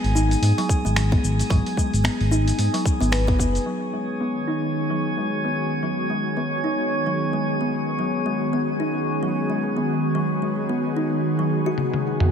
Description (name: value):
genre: organic downtempo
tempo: 111 BPM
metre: 4/4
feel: swing 58% on 16ths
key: G# minor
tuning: A4 = 440 Hz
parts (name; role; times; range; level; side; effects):
- kalimba; arpeggios; 0.0-11.8 s; F#3 to B4; -25 LUFS; left 1 dB; low-pass filter, tape echo
- smooth synth bass; bass; 0.0-3.6 s; F#1 to G#2; -20 LUFS; equal; sidechain pumping
- dusty soul sampler-style drum kit; drums; 0.0-3.6, 11.8-12.3 s; cabasa, finger snaps, hi-hat, toms; -27 LUFS; left 1 dB; overdrive, low-pass filter on hats, low-pass filter on perc, low-pass filter on snare, low-pass filter on toms
- drifting glass-harmonics texture; texture; 0.0-11.8 s; C#4 to G#5; -28 LUFS; equal; chorus, built-in reverb
- electronic kick drum; drums; 0.7-3.5 s; none; -22 LUFS; equal; overdrive
- ethereal airy pad; sustained chords; 4.2-12.3 s; D#3 to G#4; -25 LUFS; equal; ensemble chorus, built-in reverb, sidechain pumping
room: moderate lush hall reverb, RT60 2.3 s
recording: none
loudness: -20 LUFS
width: side -7 dB against mid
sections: 0.0-3.7 A section; 3.7-12.3 B section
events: filter sweep on kalimba 3.7-12.3; drum fill 11.8-12.3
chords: 0.0 G#m7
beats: 0.42 0.96 | 1.50 2.04 2.59 3.13 | 3.67 4.21 4.75 5.29 | 5.83 6.37 6.91 7.45 | 7.99 8.53 9.07 9.61 | 10.15 10.69 11.23 11.78